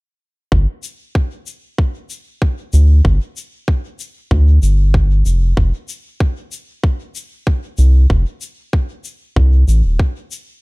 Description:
ambient dub; 95 BPM; 4/4; straight; A4 = 440 Hz
round analog bass; bass; 0.5-10.0 s; Eb1 to D2; -10 LUFS; equal; tube saturation
electronic kick drum; drums; 0.5-10.1 s; -16 LUFS; equal
shaker; drums; 0.8-10.4 s; -34 LUFS; left 5 dB; dub echo
little or no reverb; -13 LUFS; side -28 dB against mid
0.5-10.6 A section

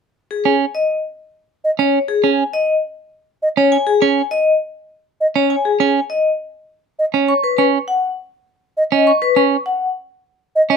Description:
classical, minimalist pattern music; 101 BPM; 3/4; straight; A4 = 440 Hz
vibraphone with hard mallets; melody; 0.3-10.8 s; G#4 to C#6; -16 LUFS; left 4 dB
clean electric guitar; arpeggios; 0.5-10.8 s; C#4; -15 LUFS; right 9 dB
mellow hollow concert flute; arpeggios; 1.6-10.6 s; D#5; -16 LUFS; right 1 dB
light reverb; close, detailed microphones; -15 LUFS; side -6 dB against mid
0.2-10.8 A section
0.2 C#5

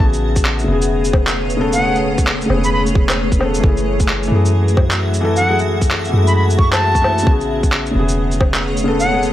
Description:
future garage; 132 BPM; 4/4; swing 60% on 16ths; A4 = 441 Hz
bright silver concert flute; melody; 0.0-9.2 s; F#5 to C#6; -20 LUFS; equal; tape echo
felt-muted upright piano; accompaniment; 0.0-9.3 s; C#3 to A4; -20 LUFS; left 2 dB; sidechain pumping, tape echo
granular cloud pad; sustained chords; 0.0-9.3 s; A3 to F#5; -23 LUFS; equal; built-in reverb, sidechain pumping
soft 808-style bass; bass; 0.0-9.3 s; E1 to F#2; -19 LUFS; equal; sidechain pumping
electronic kick drum; drums; 0.0-8.5 s; -15 LUFS; equal
electronic shaker, handclaps and woodblock; drums; 0.1-9.3 s; -21 LUFS; equal
light reverb; vinyl crackle; -13 LUFS; side -13 dB against mid
0.0-9.3 A section
0.0 Amaj9; 3.6 F#m9; 7.3 Amaj9

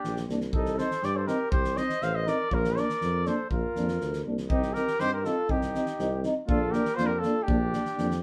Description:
balkan folk, Balkan brass band; 121 BPM; 2/4; straight; A4 = 440 Hz
mellow trumpet; melody; 0.0-8.2 s; G4 to F5; -32 LUFS; equal
mellow trumpet; second line; 0.0-8.2 s; D4 to C5; -38 LUFS; equal
mellow tuba; bass; 0.0-8.2 s; A1 to G2; -34 LUFS; equal
loose indie drum kit; percussion; 0.0-8.2 s; kick drum, snare drum; -35 LUFS; equal
clear euphonium; accompaniment; 0.3-8.1 s; D4 to Eb4; -36 LUFS; equal
dark euphonium; accompaniment; 0.3-8.1 s; Bb3 to C4; -35 LUFS; equal
moderate studio reverb, RT60 0.6 s; band playing live in one room; -28 LUFS; mono
0.0-4.5 A section; 4.5-8.2 A section
0.0 Bb; 0.5 Cm; 2.5 Bb; 4.5 Cm; 6.5 Bb

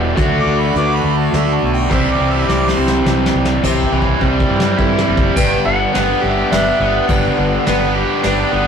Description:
folk rock and heartland rock; 104 BPM; 3/4; straight; G major; A4 = 440 Hz
clear upright piano; accompaniment; 0.0-8.6 s; B3 to G5; -25 LUFS; equal
picked steel-string acoustic guitar; accompaniment; 0.0-8.7 s; G2 to G4; -27 LUFS; left 4 dB
pedal harmonium; sustained chords; 0.0-8.7 s; A3 to G4; -24 LUFS; right 1 dB
overdriven electric guitar; riff; 0.0-8.7 s; E2 to G4; -17 LUFS; equal
fingered electric bass; bass; 0.0-8.7 s; E1 to G2; -20 LUFS; equal
soft brush drum kit; drums; 0.2-8.4 s; crash cymbal, hi-hat, kick drum, ride cymbal, snare drum; -20 LUFS; equal
clear harmonica; second line; 0.4-3.0 s; C5 to D6; -21 LUFS; right 3 dB
clean lap steel guitar; melody; 5.4-8.6 s; B4 to G5; -21 LUFS; equal
moderate stone room reverb, RT60 1.0 s; rough rehearsal-room recording, warm saturation; -13 LUFS; side -7 dB against mid
0.0-3.6 A section; 3.6-5.4 B section; 5.4-8.7 C section
upright piano fill 0.0; harmonica solo 0.0-3.6; drum fill 2.5-3.6, 3.6-5.4
0.2 D; 1.9 C; 5.4 G

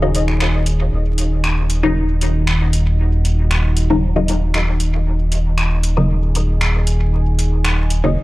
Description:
dub techno; 116 BPM; 4/4; straight; Eb minor; A4 = 440 Hz
deep dark ambient pad; sustained chords; 0.0-8.2 s; Eb4 to Ab5; -25 LUFS; right 1 dB; chorus, built-in reverb
filtered dub chord stab; stabs; 0.0-8.2 s; Db3 to Eb4; -21 LUFS; left 2 dB; phaser, dub echo
round analog bass; bass; 0.0-8.2 s; Eb1; -16 LUFS; equal; tube saturation
deep house drum kit; drums; 0.1-8.0 s; finger snaps, hi-hat; -23 LUFS; equal; overdrive, dub echo
digital ambience; dry, gritty hardware recording, vinyl crackle; -15 LUFS; side -19 dB against mid
0.0-8.2 A section
filter sweep on synth stab 0.0-8.2; filter sweep on ambient pad 0.0-8.2
0.0 Ebm7

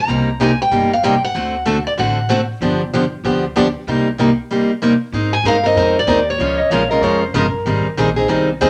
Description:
acoustic string swing (jazz manouche); 190 BPM; 4/4; swing 60% on 8ths; C minor; A4 = 441 Hz
picked steel-string acoustic guitar; melody; 0.0-2.5, 5.3-6.9 s; Db5 to Bb5; -20 LUFS; equal
picked plugged-in steel-string acoustic guitar; accompaniment; 0.1-8.7 s; C3 to Bb4; -18 LUFS; equal
upright bass; bass; 0.1-8.7 s; F1 to Ab2; -27 LUFS; equal
dark soprano saxophone; second line; 6.6-8.0 s; Bb4 to F5; -23 LUFS; equal
wet small room reverb, RT60 0.5 s; -16 LUFS; mono
0.0-5.1 A section; 5.1-8.7 B section
0.1 Cm7; 1.3 D7; 2.6 G7; 3.9 Cm7; 5.1 Abadd9; 6.4 Db6; 7.7 Abmaj7

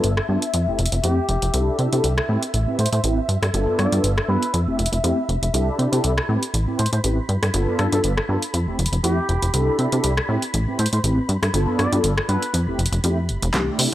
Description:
filtered disco house; 120 BPM; 4/4; swing 55% on 16ths; A4 = 440 Hz
mellow synth brass; accompaniment; 0.0-13.9 s; A3 to B4; -25 LUFS; equal; chorus, phaser, sidechain pumping, low-pass filter
phased string machine; sustained chords; 0.0-13.9 s; E5 to B5; -32 LUFS; equal; ensemble chorus, phaser, sidechain pumping, low-pass filter
plucky analog bass; bass; 0.0-13.9 s; F1 to C3; -21 LUFS; equal; tube saturation, sidechain pumping, low-pass filter
punchy analog drum machine; drums; 0.0-13.9 s; handclaps, hi-hat, rim click; -26 LUFS; equal; sidechain pumping on hats
tambourine; percussion; 0.0-13.8 s; barely audible
clear trumpet section; melody; 1.0-12.6 s; G4 to D5; -30 LUFS; equal; sidechain pumping, low-pass filter, tape echo
electronic kick drum; drums; 13.5-13.6 s; -25 LUFS; equal; high-pass filter on kick
light reverb; dry, gritty hardware recording; -18 LUFS; side -14 dB against mid
0.0-13.5 A section
filter sweep 0.0-13.5; drum fill 13.5-13.9
0.0 G7; 0.5 Fmaj7; 1.5 C6; 2.3 Am9; 3.3 G7; 4.5 Fmaj7; 5.5 C6; 6.3 Am9; 7.3 G7; 8.5 Fmaj7; 9.5 C6; 10.3 Am9; 11.3 G7; 12.5 Fmaj7

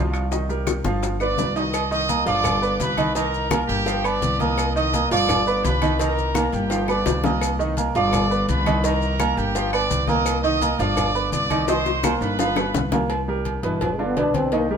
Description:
latin, salsa; 169 BPM; 4/4; straight; C minor; A4 = 443 Hz
clear concert grand piano; accompaniment; 0.0-14.8 s; B2 to B5; -24 LUFS; right 3 dB
upright bass; bass; 0.0-14.8 s; G1 to C2; -25 LUFS; left 1 dB
claves; percussion; 0.1-12.7 s; -36 LUFS; left 5 dB
congas; percussion; 0.1-14.8 s; -30 LUFS; left 4 dB
maracas; percussion; 0.1-13.1 s; -36 LUFS; left 10 dB
timbales and agogo bells; percussion; 0.1-14.7 s; -31 LUFS; right 5 dB
bongos and cowbell; percussion; 0.3-14.7 s; -31 LUFS; left 6 dB
bright trumpet section; melody; 1.2-12.9 s; G4 to Eb6; -24 LUFS; right 1 dB
mellow trombone; melody; 13.6-14.8 s; E3 to D4; -23 LUFS; left 2 dB
moderate plate reverb, RT60 3.8 s; minimal, uncompressed stereo recording; -19 LUFS; side -7 dB against mid
0.0-1.7 A section; 1.7-13.1 B section; 13.1-14.8 C section
drum fill 1.2-1.7, 6.4-7.4, 11.7-13.1; trombone solo 13.1-14.8
0.3 Cm7; 1.0 G7; 1.7 Cm7; 2.4 G7; 3.2 Cm7; 3.9 G7; 4.6 Cm7; 5.3 G7; 6.0 Cm7; 6.7 G7; 7.4 Cm7; 8.1 G7; 8.8 Cm7; 9.5 G7; 10.3 Cm7; 11.0 G7; 11.7 Cm7; 12.4 G7; 13.1 C5; 13.8 G7

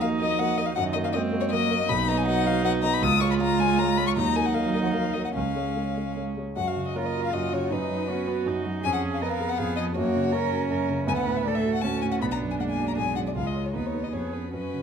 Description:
quick classical-period movement for piano quartet; 159 BPM; 3/4; rubato; F# major; A4 = 440 Hz
dark violin; melody; 0.0-14.8 s; B4 to D#6; -28 LUFS; left 9 dB
dark cello; second line; 0.0-14.8 s; Eb3 to B4; -31 LUFS; right 7 dB
dark concert grand piano; accompaniment; 0.0-14.8 s; B1 to Eb5; -28 LUFS; right 1 dB
rich viola; accompaniment; 0.0-14.8 s; G#3 to F#4; -30 LUFS; right 3 dB
moderate recital hall reverb, RT60 1.5 s; -23 LUFS; side -7 dB against mid
0.0-6.6 A section; 6.6-14.8 B section
0.0 Ebm; 0.8 Ebm/Gb; 1.9 B; 3.0 C#; 4.2 D#m; 5.3 C#; 6.6 F#; 7.7 B/F#; 8.8 C#7/E#; 10.0 F#; 11.1 D; 12.2 G#m7b5/B; 13.4 C#; 13.7 B/D#; 14.1 C#7/E#

